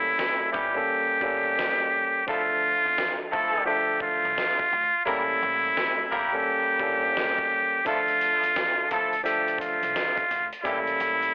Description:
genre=hip hop, boom-bap hip-hop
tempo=86 BPM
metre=4/4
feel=swing 63% on 16ths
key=D harmonic minor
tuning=A4 = 439 Hz
part: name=trumpet with straight mute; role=melody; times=0.0-11.3 s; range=E4 to A4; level=-23 LUFS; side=equal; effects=high-pass filter, low-pass filter, digital delay
part: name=mellow tine electric piano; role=accompaniment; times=0.0-11.3 s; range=F3 to E5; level=-32 LUFS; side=equal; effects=medium stereo tremolo, cassette tape, high-pass filter, low-pass filter, plate reverb
part: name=upright bass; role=bass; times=0.0-11.3 s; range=G1 to E2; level=-44 LUFS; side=equal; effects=none
part: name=trip hop sampler-style drum kit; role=drums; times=0.2-11.3 s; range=hi-hat, kick drum, snare drum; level=-33 LUFS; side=equal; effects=none
part: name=clear horn section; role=stabs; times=0.5-10.8 s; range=E3 to Bb4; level=-31 LUFS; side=equal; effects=high-pass filter, low-pass filter, plate reverb, digital delay
room=moderate studio ambience, RT60 0.5 s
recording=blown-out, overdriven recording, vinyl crackle, overdrive, telephone sound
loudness=-22 LUFS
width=side -34 dB against mid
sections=0.0-11.3 A section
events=break 0.0-7.9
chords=0.0 A7b9; 2.3 Dmadd9; 5.1 A7b9; 7.9 Dmadd9; 10.6 A7b9

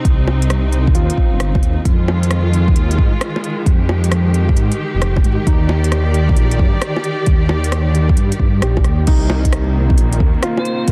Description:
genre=future garage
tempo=133 BPM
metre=4/4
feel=swing 66% on 16ths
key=C minor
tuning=A4 = 440 Hz
part: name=felt-muted upright piano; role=accompaniment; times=0.0-1.9, 5.5-10.9 s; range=Eb4 to Bb4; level=-29 LUFS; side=equal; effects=sidechain pumping, tape echo
part: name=rich symphonic string section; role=sustained chords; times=0.0-10.9 s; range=C3 to D5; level=-25 LUFS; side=equal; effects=sidechain pumping
part: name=swelling detuned saw bass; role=bass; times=0.0-10.9 s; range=F1 to Ab2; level=-18 LUFS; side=equal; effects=sidechain pumping
part: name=electronic kick drum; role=drums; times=0.0-10.9 s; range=none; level=-16 LUFS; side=equal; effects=none
part: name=organic electronic drum kit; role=drums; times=0.1-10.9 s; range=bongos, crash cymbal, hi-hat, rim click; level=-26 LUFS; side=equal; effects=soft clipping on snare
part: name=airy dreamy lead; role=melody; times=10.6-10.8 s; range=C5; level=-25 LUFS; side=equal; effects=chorus, vintage 12-bit sampler grit
room=digital ambience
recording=dense, heavily limited modern master, vinyl crackle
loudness=-15 LUFS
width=mono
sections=0.0-9.1 A section; 9.1-10.9 B section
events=none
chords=0.0 Cm; 1.9 Fm7; 5.5 Ebmaj7; 9.1 Cm7

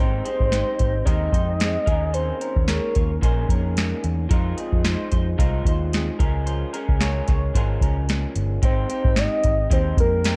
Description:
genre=indie pop, bedroom pop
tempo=111 BPM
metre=4/4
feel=swing 55% on 16ths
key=Ab major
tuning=A4 = 440 Hz
part: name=soft octave-layered synth lead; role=melody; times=0.0-4.0, 8.6-10.4 s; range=Bb4 to Eb5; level=-28 LUFS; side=equal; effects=subtle chorus
part: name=electric guitar through a small old amp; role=second line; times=0.0-8.0 s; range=C4 to Db5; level=-37 LUFS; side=equal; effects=subtle chorus, analog delay
part: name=electric guitar through a small old amp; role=accompaniment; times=0.0-10.4 s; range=Db3 to C5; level=-32 LUFS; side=equal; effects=subtle chorus, vibrato effect
part: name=vintage muted picked electric bass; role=bass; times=0.0-10.4 s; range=G1 to F2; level=-26 LUFS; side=equal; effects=none
part: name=soft vintage rhythm box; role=drums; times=0.3-10.4 s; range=hi-hat, kick drum, snare drum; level=-24 LUFS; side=equal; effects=overdrive
room=light reverb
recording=dark, warm production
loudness=-22 LUFS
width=mono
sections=0.0-8.6 A section; 8.6-10.4 B section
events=none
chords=0.0 Abmaj7; 1.9 Eb7sus4; 4.3 Fm7; 6.2 Db6; 8.6 Abmaj7

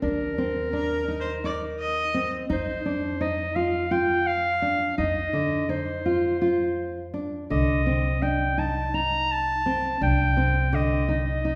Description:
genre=contemporary instrumental, chamber music in an uneven meter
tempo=168 BPM (eighths)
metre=7/8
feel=straight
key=unclear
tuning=A4 = 439 Hz
part: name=clear clarinet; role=melody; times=0.0-11.6 s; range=Bb4 to Bb5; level=-29 LUFS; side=equal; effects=none
part: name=nylon-string guitar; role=arpeggios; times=0.0-11.6 s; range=D3 to F4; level=-30 LUFS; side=equal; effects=none
part: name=upright bass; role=bass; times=0.0-11.6 s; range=C2 to F2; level=-32 LUFS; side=equal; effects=none
part: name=rich viola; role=second line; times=0.7-2.3 s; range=Bb4 to Eb5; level=-32 LUFS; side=equal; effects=none
room=wet recital hall reverb, RT60 1.5 s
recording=recorded in a church or concert hall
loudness=-25 LUFS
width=mono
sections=0.0-11.6 A section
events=none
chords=0.0 Eb5; 2.5 F5; 7.5 Cmadd9

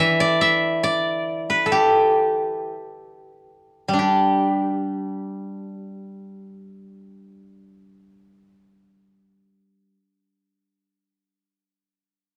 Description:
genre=chinese traditional, Chinese solo plucked strings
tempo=44-72 BPM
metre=2/4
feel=rubato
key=G gong mode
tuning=A4 = 439 Hz
part: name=steel-string zither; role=solo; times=0.0-9.9 s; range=E3 to E5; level=-22 LUFS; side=equal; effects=none
room=moderate studio ambience, RT60 0.5 s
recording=worn, warbling old tape, cassette tape, warbly pitch drift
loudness=-20 LUFS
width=mono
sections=0.0-4.0 A section; 4.0-9.3 B section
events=slowing down 0.0-4.0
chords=none

